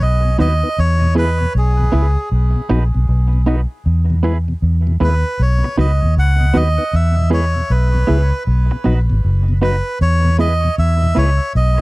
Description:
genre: reggae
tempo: 78 BPM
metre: 4/4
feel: swing 64% on 16ths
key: unclear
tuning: A4 = 441 Hz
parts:
  - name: melodica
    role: melody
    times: 0.0-11.8 s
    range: G#4 to F#5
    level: -21 LUFS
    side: right 1 dB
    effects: tape echo
  - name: vintage muted fingered electric bass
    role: bass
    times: 0.0-11.8 s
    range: F#1 to E2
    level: -14 LUFS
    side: equal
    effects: none
  - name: mellow tonewheel organ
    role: accompaniment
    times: 0.2-11.3 s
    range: E2 to E4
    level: -23 LUFS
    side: left 2 dB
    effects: slow rotary speaker
  - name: semi-hollow electric guitar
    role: accompaniment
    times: 0.4-11.8 s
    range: B3 to B4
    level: -21 LUFS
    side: right 3 dB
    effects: harmonic tremolo, tape echo
room: little or no reverb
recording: dry, close 1970s-style studio recording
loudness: -13 LUFS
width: side -21 dB against mid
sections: 0.0-11.8 A section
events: melodica solo 0.0-11.8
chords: 0.0 B; 0.8 E; 2.3 B; 3.9 E; 5.4 B; 6.9 E; 8.5 B; 10.0 E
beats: 0.01 | 0.78 1.55 2.31 3.08 | 3.85 4.62 5.39 6.16 | 6.93 7.70 8.47 9.24 | 10.01 10.77 11.54

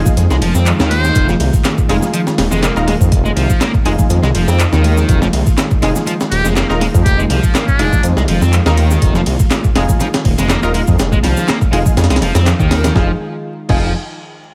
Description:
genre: breakbeat, breaks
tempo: 122 BPM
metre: 4/4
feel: swing 54% on 16ths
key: unclear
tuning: A4 = 440 Hz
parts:
  - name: lush unison pad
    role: sustained chords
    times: 0.0-13.2 s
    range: Eb3 to F4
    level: -26 LUFS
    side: equal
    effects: chorus, vintage 12-bit sampler grit, sidechain pumping
  - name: orchestra-hit-like synth stab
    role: stabs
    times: 0.0-13.9 s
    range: Eb4 to Bb4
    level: -25 LUFS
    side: equal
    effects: built-in reverb, digital delay
  - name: breakbeat sampler-style drum kit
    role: drums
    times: 0.1-13.8 s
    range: crash cymbal, hi-hat, kick drum, snare drum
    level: -18 LUFS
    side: equal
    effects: none
  - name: house drum kit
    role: drums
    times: 0.1-12.9 s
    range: handclaps, ride cymbal, shaker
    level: -28 LUFS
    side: equal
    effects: none
  - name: congas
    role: percussion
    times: 0.1-12.9 s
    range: none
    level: -27 LUFS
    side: equal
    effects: none
  - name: detuned saw bass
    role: bass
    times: 0.2-13.9 s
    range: Eb1 to F2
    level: -17 LUFS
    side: equal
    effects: none
  - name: overdriven electric guitar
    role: riff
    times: 0.3-13.9 s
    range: Eb3 to C4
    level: -24 LUFS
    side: equal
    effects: vintage 12-bit sampler grit, digital delay
  - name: trumpet with metal mute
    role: melody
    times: 0.9-1.3, 6.3-8.0 s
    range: D4 to C5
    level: -22 LUFS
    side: equal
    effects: AM radio sound, digital delay
room: little or no reverb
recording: vinyl crackle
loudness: -14 LUFS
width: mono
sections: 0.0-13.0 A section; 13.0-14.5 B section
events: drop 0.0-13.0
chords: 0.0 Fm7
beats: 0.17 0.66 | 1.15 1.64 2.14 2.63 | 3.12 3.61 4.10 4.59 | 5.09 5.58 6.07 6.56 | 7.05 7.55 8.04 8.53 | 9.02 9.51 10.01 10.50 | 10.99 11.48 11.97 12.46 | 12.96 13.45

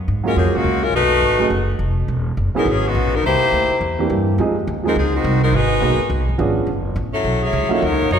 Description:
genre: jazz, big band swing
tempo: 209 BPM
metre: 4/4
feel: swing 60% on 8ths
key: unclear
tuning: A4 = 437 Hz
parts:
  - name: upright bass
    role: bass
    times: 0.0-8.2 s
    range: E1 to Ab2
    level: -20 LUFS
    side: equal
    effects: none
  - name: warm concert grand piano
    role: accompaniment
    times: 0.2-7.8 s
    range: E3 to Ab4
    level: -22 LUFS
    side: right 4 dB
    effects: none
  - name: bright saxophone section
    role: melody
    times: 0.3-8.2 s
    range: C#3 to Db5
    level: -19 LUFS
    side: left 2 dB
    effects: none
room: wet concert hall reverb, RT60 2.2 s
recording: recorded in a church or concert hall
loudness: -16 LUFS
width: side -8 dB against mid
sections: 0.0-8.2 A section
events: none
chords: 0.0 Gbmaj9; 0.9 Cb13; 2.1 E69; 3.2 C7; 4.4 Fm7; 5.5 Abm7; 6.1 Db7b9; 6.7 Gbm7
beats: 0.07 0.36 0.65 | 0.94 1.23 1.51 1.80 | 2.09 2.37 2.66 2.95 | 3.23 3.52 3.81 4.10 | 4.38 4.67 4.96 5.25 | 5.53 5.82 6.11 6.39 | 6.68 6.97 7.25 7.54 | 7.83 8.12

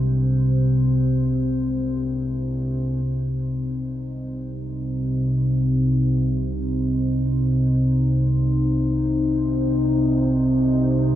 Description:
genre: dark ambient drone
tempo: free time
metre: none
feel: none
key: C minor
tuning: A4 = 438 Hz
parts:
  - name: dark analog pad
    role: sustained chords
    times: 0.0-11.2 s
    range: Ab3 to C5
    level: -29 LUFS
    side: left 2 dB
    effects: chorus, phaser
  - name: analog drone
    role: drone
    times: 0.0-11.2 s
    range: C2 to C3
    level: -20 LUFS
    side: equal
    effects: chorus
room: wet huge ambient reverb, RT60 9.0 s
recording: none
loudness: -19 LUFS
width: side -12 dB against mid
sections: 0.0-3.0 A section; 3.0-11.2 B section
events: fade-in on analog synth pad 3.0-11.2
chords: 0.0 Ab; 3.0 Cm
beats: free time

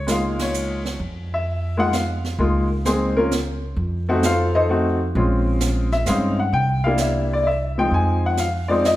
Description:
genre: jazz piano trio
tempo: 130 BPM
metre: 3/4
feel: swing 68% on 8ths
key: Db major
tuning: A4 = 440 Hz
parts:
  - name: clear upright piano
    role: melody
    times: 0.0-9.0 s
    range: F3 to Ab5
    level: -20 LUFS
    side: left 1 dB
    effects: none
  - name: upright bass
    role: bass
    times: 0.0-9.0 s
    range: Bb1 to G2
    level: -23 LUFS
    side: right 1 dB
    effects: none
  - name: jazz brush drum kit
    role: drums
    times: 0.1-9.0 s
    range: brushed snare drum, hi-hat, ride cymbal, snare drum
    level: -29 LUFS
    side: right 3 dB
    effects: none
room: moderate recital hall reverb, RT60 1.4 s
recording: recorded in a church or concert hall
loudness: -18 LUFS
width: side -15 dB against mid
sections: 0.0-2.4 A section; 2.4-9.0 B section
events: band accent 0.3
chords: 0.0 Db69; 2.4 Db6; 3.8 F7b9; 5.2 Bbm9; 6.5 C7; 7.9 Fm7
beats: 0.07 0.53 | 0.99 1.46 1.92 | 2.38 2.84 3.31 | 3.77 4.23 4.69 | 5.15 5.61 6.08 | 6.54 7.00 7.46 | 7.92 8.38 8.85

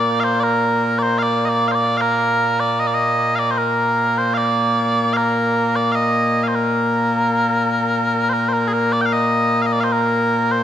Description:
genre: scottish traditional, Scottish pipe music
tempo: 76 BPM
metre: 2/4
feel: straight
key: Bb major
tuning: A4 = 440 Hz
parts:
  - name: mellow small bagpipes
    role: solo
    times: 0.0-10.6 s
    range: Bb2 to G5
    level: -16 LUFS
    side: equal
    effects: none
room: wet concert hall reverb, RT60 2.3 s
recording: none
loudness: -16 LUFS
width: side -10 dB against mid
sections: 0.0-8.3 A section; 8.3-10.6 A section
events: none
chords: none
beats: | 0.43 1.22 | 2.01 2.80 | 3.59 4.38 | 5.17 5.96 | 6.75 7.54 | 8.33 9.12 | 9.91

